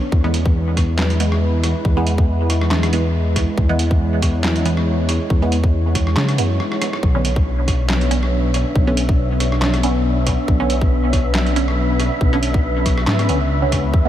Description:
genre	deep dubstep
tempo	139 BPM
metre	4/4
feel	swing 54% on 16ths, half-time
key	B dorian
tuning	A4 = 439 Hz
part	dark analog pad	sustained chords	0.0-14.1 s	G#3 to C#5	-23 LUFS	left 1 dB	chorus
part	dark detuned saw bass	bass	0.1-14.1 s	B1 to C#3	-18 LUFS	equal	none
part	electronic kick drum	drums	0.1-14.0 s	none	-17 LUFS	equal	none
part	filtered dub chord stab	stabs	0.2-14.1 s	D3 to C#4	-25 LUFS	right 3 dB	phaser, dub echo
part	trip hop sampler-style drum kit	drums	0.3-13.8 s	handclaps, hi-hat, rim click, snare drum	-25 LUFS	right 1 dB	overdrive
part	wind-like tuned noise texture	texture	7.5-14.1 s	E5	-28 LUFS	right 1 dB	built-in reverb
room	light reverb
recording	none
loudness	-15 LUFS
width	side -12 dB against mid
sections	0.0-14.1 A section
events	break 6.6-7.0; drum fill 6.6-7.0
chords	0.1 E; 7.0 Bmadd9

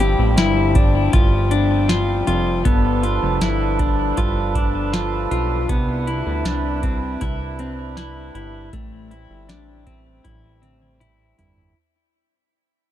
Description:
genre	dream pop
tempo	79 BPM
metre	4/4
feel	straight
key	A minor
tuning	A4 = 439 Hz
part	mellow accordion	sustained chords	0.0-11.7 s	C3 to B4	-26 LUFS	right 5 dB	none
part	clean electric guitar	arpeggios	0.0-11.8 s	A3 to G4	-23 LUFS	left 6 dB	lush chorus, ping-pong delay
part	fat analog bass	bass	0.0-11.7 s	F1 to D2	-22 LUFS	right 1 dB	none
part	booming analog drum machine	drums	0.0-11.8 s	hi-hat, kick drum, snare drum, toms	-19 LUFS	right 1 dB	none
room	little or no reverb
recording	dark, warm production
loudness	-17 LUFS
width	side -11 dB against mid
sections	0.0-11.8 A section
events	fade-out 0.0-11.8; drum fill 10.2-11.8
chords	0.0 Am7; 2.7 G7; 5.7 Cmaj7; 8.7 Am7

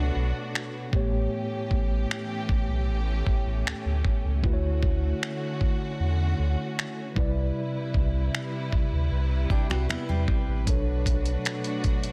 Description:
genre	contemporary R&B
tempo	77 BPM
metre	4/4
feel	straight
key	D major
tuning	A4 = 440 Hz
part	mellow tine electric piano	accompaniment	0.0-12.1 s	A2 to D5	-34 LUFS	equal	none
part	warm studio string section	sustained chords	0.0-12.1 s	C3 to B4	-38 LUFS	equal	sidechain pumping
part	warm sub bass	bass	0.0-11.4 s	A1 to E2	-28 LUFS	equal	none
part	dusty soul sampler-style drum kit	drums	0.6-12.1 s	finger snaps, hi-hat, kick drum	-29 LUFS	equal	none
part	fingerpicked steel-string acoustic guitar	arpeggios	9.5-10.6 s	G3 to G4	-36 LUFS	equal	none
room	little or no reverb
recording	none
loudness	-27 LUFS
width	mono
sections	0.0-12.1 A section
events	break 0.0-10.7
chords	0.0 Bm7; 0.9 A7; 4.4 Dmaj7; 7.2 Cmaj7; 10.7 Bm7

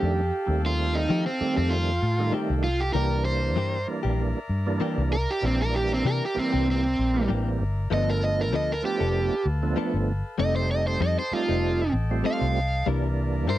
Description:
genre	blues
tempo	97 BPM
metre	4/4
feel	swing 54% on 16ths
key	C mixolydian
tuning	A4 = 438 Hz
part	crunchy overdriven guitar	melody	0.0-13.6 s	C4 to F5	-26 LUFS	right 2 dB	none
part	percussive tonewheel organ	accompaniment	0.0-13.5 s	Eb3 to F4	-29 LUFS	right 4 dB	slow rotary speaker, overdrive, chorus vibrato
part	warm horn section	sustained chords	0.0-13.6 s	A4 to Bb5	-38 LUFS	left 3 dB	none
part	direct-recorded clean electric guitar	stabs	0.0-13.6 s	Eb3 to Bb4	-30 LUFS	left 8 dB	wide subtle chorus
part	vintage muted fingered electric bass	bass	0.0-13.6 s	F1 to F3	-26 LUFS	left 1 dB	none
room	little or no reverb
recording	dry, close 1970s-style studio recording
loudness	-23 LUFS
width	side -14 dB against mid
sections	0.0-13.6 A section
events	overdriven electric guitar solo 0.0-13.6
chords	0.0 F9; 3.0 C9; 7.9 G9; 10.4 F9; 12.9 C9

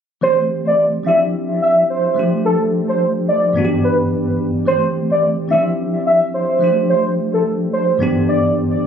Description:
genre	afrobeats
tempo	108 BPM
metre	4/4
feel	swing 58% on 16ths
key	A minor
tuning	A4 = 441 Hz
part	warm velvety synth lead	melody	0.2-8.4 s	A4 to E5	-16 LUFS	right 1 dB	chorus, tape echo
part	bell-like tine electric piano	accompaniment	0.2-8.9 s	G2 to G4	-18 LUFS	equal	medium stereo tremolo
room	moderate plate reverb, RT60 2.5 s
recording	recorded on a phone in the room, studio reverb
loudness	-14 LUFS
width	side -7 dB against mid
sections	0.2-8.9 A section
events	none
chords	0.2 Am7; 1.1 Dm11; 2.2 F69; 3.6 Em7/G; 4.7 Am7; 5.5 Dm11; 6.6 F69; 8.0 Em7/G

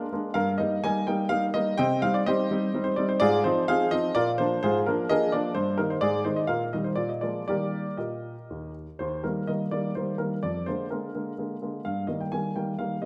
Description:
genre	classical-period piano sonatina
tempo	126 BPM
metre	3/4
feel	rubato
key	Eb major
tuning	A4 = 441 Hz
part	warm baby grand piano	solo	0.0-13.1 s	Eb2 to Ab5	-27 LUFS	equal	none
room	wet recital hall reverb, RT60 1.5 s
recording	none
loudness	-27 LUFS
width	mono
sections	0.0-9.0 A section; 9.0-13.1 A section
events	none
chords	0.4 Eb/G; 1.8 Cm; 3.2 Fm7/Ab; 4.1 Bb; 4.6 Bb7/Ab; 5.6 Eb/G; 6.0 Ab5; 6.5 Eb/Bb; 7.0 Bb7; 7.5 Eb; 10.4 Bb7/F; 11.9 Eb/G

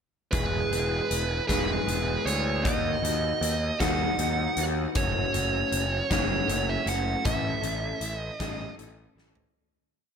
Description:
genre	quiet-loud alternative rock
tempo	52 BPM (dotted quarters)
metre	6/8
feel	straight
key	E major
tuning	A4 = 437 Hz
part	high-gain lead guitar	melody	0.3-8.7 s	B4 to F#5	-29 LUFS	right 3 dB	distortion, slapback echo
part	electric guitar through a small old amp	arpeggios	0.3-9.5 s	D#3 to A4	-32 LUFS	equal	analog chorus, slapback echo
part	fuzz picked electric bass	bass	0.3-9.4 s	E1 to D#2	-30 LUFS	equal	overdrive
part	big rock drum kit	drums	0.3-9.5 s	hi-hat, kick drum, snare drum, toms	-31 LUFS	left 1 dB	none
room	moderate concert hall reverb, RT60 2.2 s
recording	big arena sound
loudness	-24 LUFS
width	side -6 dB against mid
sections	0.3-9.5 verse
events	fade-out 7.2-9.5; drum fill 9.2-9.5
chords	0.3 E; 2.6 B/D#; 5.0 F#m; 7.2 A

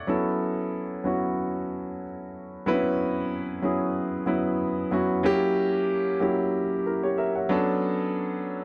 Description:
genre	R&B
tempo	93 BPM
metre	4/4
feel	swing 54% on 16ths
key	A major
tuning	A4 = 440 Hz
part	warm grand piano	solo	0.0-8.6 s	F#3 to F#5	-27 LUFS	equal	none
room	light reverb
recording	none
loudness	-26 LUFS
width	mono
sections	0.1-8.6 A section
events	none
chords	0.1 A69; 5.2 F#7b9; 7.5 Bm7

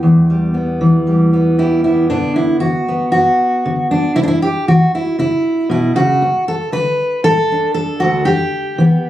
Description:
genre	folk, solo fingerstyle acoustic guitar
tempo	117 BPM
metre	4/4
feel	straight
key	unclear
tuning	A4 = 440 Hz
part	fingerpicked steel-string acoustic guitar	solo	0.0-9.1 s	D2 to B4	-12 LUFS	equal	none
room	light reverb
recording	recorded on a phone in the room, club reverb, compression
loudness	-12 LUFS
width	side -13 dB against mid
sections	0.0-2.1 A section; 2.1-9.1 B section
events	none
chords	0.0 Em; 2.1 Bm; 4.2 Bsus24; 6.2 D5; 8.3 Em

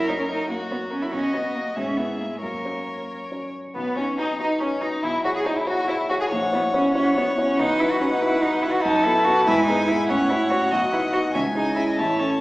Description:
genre	quick classical-period movement for piano quartet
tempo	94 BPM (dotted quarters)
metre	6/8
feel	rubato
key	B major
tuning	A4 = 440 Hz
part	rich cello	second line	0.0-12.4 s	G#3 to G#4	-23 LUFS	right 1 dB	none
part	rich violin	second line	0.0-12.4 s	B3 to E5	-29 LUFS	left 1 dB	none
part	warm grand piano	accompaniment	0.0-12.4 s	A1 to E5	-26 LUFS	equal	none
part	rich violin	melody	0.3-12.4 s	B3 to A5	-26 LUFS	left 1 dB	none
room	wet recital hall reverb, RT60 1.4 s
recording	recorded in a church or concert hall, small speaker sound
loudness	-20 LUFS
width	side -18 dB against mid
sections	0.0-3.7 A section; 3.7-12.4 B section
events	none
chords	0.0 F#; 1.1 B; 1.8 E/G#; 2.4 F#; 3.7 B; 5.0 C#m7/B; 6.3 F#7/A#; 7.6 B; 8.8 B5/F#; 9.5 E/G#; 10.1 F#m/A; 10.7 B; 11.3 C#m

